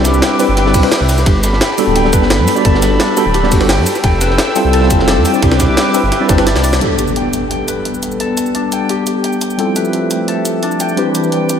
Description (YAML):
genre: liquid drum and bass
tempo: 173 BPM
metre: 4/4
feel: straight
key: G major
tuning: A4 = 440 Hz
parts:
  - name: mellow tine electric piano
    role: accompaniment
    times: 0.0-11.6 s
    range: G3 to D5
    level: -17 LUFS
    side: equal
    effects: overdrive, medium stereo tremolo, ping-pong delay
  - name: warm analog pad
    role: sustained chords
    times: 0.0-11.6 s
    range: E3 to E6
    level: -19 LUFS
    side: equal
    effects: chorus, sidechain pumping
  - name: Celtic harp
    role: arpeggios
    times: 0.0-11.6 s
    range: D4 to G5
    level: -20 LUFS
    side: left 5 dB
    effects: low-pass filter, diffuse ambient delay
  - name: dark detuned saw bass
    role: bass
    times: 0.0-6.8 s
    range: D1 to G2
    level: -15 LUFS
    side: right 1 dB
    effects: none
  - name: crunchy breakbeat drum kit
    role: drums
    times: 0.0-6.7 s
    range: hi-hat, ride cymbal, snare drum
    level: -23 LUFS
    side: equal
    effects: high-pass filter on cymbals, high-pass filter on hats, high-pass filter on snare, high-pass filter on room
  - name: jungle sampler-style drum kit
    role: drums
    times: 0.1-11.6 s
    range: hi-hat, shaker, snare drum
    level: -19 LUFS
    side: right 1 dB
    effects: none
  - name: electronic kick drum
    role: drums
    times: 0.7-6.4 s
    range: none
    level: -14 LUFS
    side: right 1 dB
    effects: overdrive
  - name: impact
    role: sound effects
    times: 6.8-8.2 s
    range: none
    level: -25 LUFS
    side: equal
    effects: none
room: moderate lush hall reverb, RT60 1.9 s, studio reverb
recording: dreamy mix soaked in reverb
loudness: -11 LUFS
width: side -8 dB against mid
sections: 0.0-6.8 A section; 6.8-11.6 B section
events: drop 0.0-6.8; drum fill 6.5-6.8; band accent 6.7; impact 6.8-8.2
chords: 0.0 Cmaj9; 1.3 Gmaj9; 4.0 Fmaj9; 5.4 Cmaj9; 6.8 Gadd9; 9.6 Fmaj9; 11.0 Cmaj9